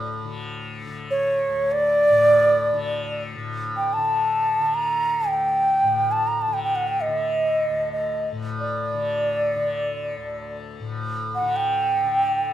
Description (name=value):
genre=indian classical, Hindustani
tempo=free time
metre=none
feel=none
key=unclear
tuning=A4 = 440 Hz
part: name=bansuri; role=melody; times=0.0-12.5 s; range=C#5 to Bb5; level=-20 LUFS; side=right 1 dB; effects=none
part: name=tanpura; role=drone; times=0.0-12.5 s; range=D2 to D3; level=-30 LUFS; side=left 3 dB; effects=none
room=moderate recital hall reverb, RT60 1.4 s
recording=minimal, uncompressed stereo recording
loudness=-20 LUFS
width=side -12 dB against mid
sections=0.0-3.4 A section; 3.4-12.5 A section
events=none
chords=none